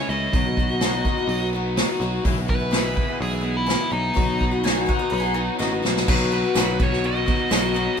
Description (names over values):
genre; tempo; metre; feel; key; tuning
folk rock and heartland rock; 125 BPM; 4/4; straight; unclear; A4 = 437 Hz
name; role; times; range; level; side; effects
nasal lead guitar with a parked wah; melody; 0.0-8.0 s; D#4 to D#5; -27 LUFS; equal; overdrive
picked swing-style acoustic guitar; accompaniment; 0.0-8.0 s; B2 to F#4; -26 LUFS; left 6 dB; none
crunchy overdriven guitar; riff; 0.0-8.0 s; B2 to G#4; -29 LUFS; right 3 dB; phaser
picked electric bass; bass; 0.1-7.9 s; A1 to C#2; -27 LUFS; right 1 dB; none
unplugged drum kit; drums; 0.3-7.9 s; crash cymbal, hi-hat, kick drum, snare drum; -23 LUFS; equal; none
mandolin; second line; 4.6-5.8 s; D#4 to G#5; -29 LUFS; right 1 dB; none
tambourine; percussion; 6.6-7.6 s; none; -37 LUFS; right 6 dB; none
room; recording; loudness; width
light reverb; band playing live in one room; -19 LUFS; side -7 dB against mid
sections
0.0-6.1 A section; 6.1-8.0 B section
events
drum fill 5.6-6.1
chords
0.3 B; 2.2 E/B; 4.2 B